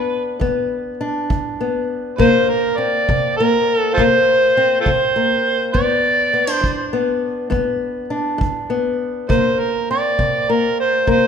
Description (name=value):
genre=acoustic country blues, solo or duo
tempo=68 BPM (dotted quarters)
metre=12/8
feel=straight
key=unclear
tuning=A4 = 440 Hz
part: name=overdriven harmonica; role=melody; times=0.0-11.3 s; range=F4 to D5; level=-16 LUFS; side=right 2 dB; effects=none
part: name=fingerpicked old ladder-braced acoustic guitar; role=accompaniment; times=0.0-11.3 s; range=G2 to D4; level=-19 LUFS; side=left 4 dB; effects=none
part: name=kick drum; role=drums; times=0.4-11.2 s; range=none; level=-23 LUFS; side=equal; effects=none
room=moderate scoring stage reverb, RT60 2.1 s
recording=minimal, uncompressed stereo recording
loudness=-15 LUFS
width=side -7 dB against mid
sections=0.0-11.3 A section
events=none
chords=0.0 G; 2.2 Bbsus2/C; 5.7 G; 9.3 C7sus2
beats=0.41 1.30 | 2.19 3.08 3.97 4.86 | 5.75 6.63 7.52 8.41 | 9.30 10.19 11.08